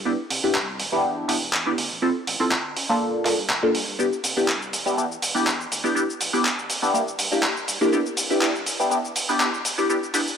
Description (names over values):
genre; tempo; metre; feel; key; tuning
filtered disco house; 122 BPM; 4/4; swing 54% on 16ths; C major; A4 = 440 Hz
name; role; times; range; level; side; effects
fingered electric bass; bass; 0.0-10.4 s; E1 to C3; -41 LUFS; equal; high-pass filter, low-pass filter
funky polysynth comp; accompaniment; 0.1-10.2 s; Bb3 to A4; -23 LUFS; equal; chorus, phaser, low-pass filter
dusty soul sampler-style drum kit; drums; 0.3-10.4 s; cabasa, handclaps, hi-hat; -24 LUFS; right 1 dB; overdrive, studio reverb
room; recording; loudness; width
moderate plate reverb, RT60 2.9 s; dry, gritty hardware recording, high-pass filter; -20 LUFS; side -7 dB against mid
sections
0.0-10.4 A section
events
build-up 0.0-10.4; filter sweep 0.0-10.4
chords
0.1 Cmaj7; 0.8 Em7; 1.8 Dm9; 3.0 Gm7; 4.0 Cmaj7; 4.7 Em7; 5.7 Dsus2; 6.9 Gm; 7.9 Cmaj7; 8.7 Em7; 9.6 Dsus2